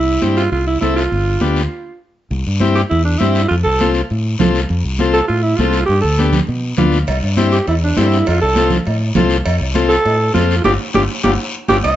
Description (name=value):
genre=latin, cumbia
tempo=202 BPM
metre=4/4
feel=straight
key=C major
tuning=A4 = 440 Hz
part: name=breathy alto saxophone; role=melody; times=0.0-12.0 s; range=D4 to Eb5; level=-17 LUFS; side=right 2 dB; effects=none
part: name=fingered electric bass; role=bass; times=0.0-12.0 s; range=G1 to B2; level=-17 LUFS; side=equal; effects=none
part: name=overdriven combo organ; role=accompaniment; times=0.2-11.8 s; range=B3 to A4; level=-19 LUFS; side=left 5 dB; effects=none
part: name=congas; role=percussion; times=0.2-12.0 s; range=none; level=-21 LUFS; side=right 3 dB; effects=none
part: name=guiro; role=percussion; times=0.2-12.0 s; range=none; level=-28 LUFS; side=left 5 dB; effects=none
part: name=cowbell and timbales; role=percussion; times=7.1-12.0 s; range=none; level=-25 LUFS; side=right 2 dB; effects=none
room=light reverb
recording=nothing above 7.7 kHz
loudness=-13 LUFS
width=side -12 dB against mid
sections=0.0-2.3 A section; 2.3-11.8 B section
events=stop 1.7-2.3; band accent 10.7-11.8; drum fill 11.4-11.8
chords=0.0 C; 1.1 G7; 2.3 C; 3.5 F; 5.9 G7; 7.1 C; 8.3 F; 10.7 G5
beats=0.23 0.53 0.83 | 1.12 1.42 1.72 2.02 | 2.32 2.61 2.91 3.21 | 3.51 3.81 4.10 4.40 | 4.70 5.00 5.29 5.59 | 5.89 6.18 6.48 6.78 | 7.08 7.38 7.67 7.97 | 8.27 8.57 8.86 9.16 | 9.46 9.76 10.05 10.35 | 10.65 10.95 11.24 11.54 | 11.84